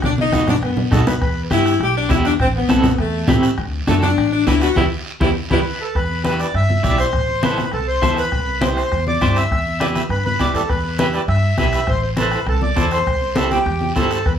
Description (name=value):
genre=latin, cumbia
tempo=202 BPM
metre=4/4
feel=straight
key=E minor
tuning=A4 = 439 Hz
part: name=clear saxophone section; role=melody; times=0.0-5.6 s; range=G3 to G4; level=-19 LUFS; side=left 3 dB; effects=plate reverb
part: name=upright bass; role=bass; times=0.0-14.4 s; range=A1 to G2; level=-21 LUFS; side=equal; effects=none
part: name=bombo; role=percussion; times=0.0-14.4 s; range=none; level=-25 LUFS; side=left 1 dB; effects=none
part: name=congas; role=percussion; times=0.0-14.1 s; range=none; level=-22 LUFS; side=left 2 dB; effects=none
part: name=guiro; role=percussion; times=0.0-14.4 s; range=none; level=-34 LUFS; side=right 5 dB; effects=none
part: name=electric guitar at the edge of break-up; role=accompaniment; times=0.3-14.2 s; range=B3 to D5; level=-21 LUFS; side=right 2 dB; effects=tremolo
part: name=accordion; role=second line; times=0.9-1.4, 5.5-14.3 s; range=G4 to E5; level=-21 LUFS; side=right 1 dB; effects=none
room=moderate studio reverb, RT60 0.8 s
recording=studio ambience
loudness=-15 LUFS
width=side -8 dB against mid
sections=0.0-5.9 A section; 5.9-14.4 B section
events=drum fill 0.0-1.2; band accent 4.8-5.9; accordion solo 5.9-14.4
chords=0.0 B; 1.2 Em; 2.4 Am; 3.6 D; 4.8 Em; 7.1 Am; 8.3 C; 9.5 Em; 11.9 Am; 13.1 C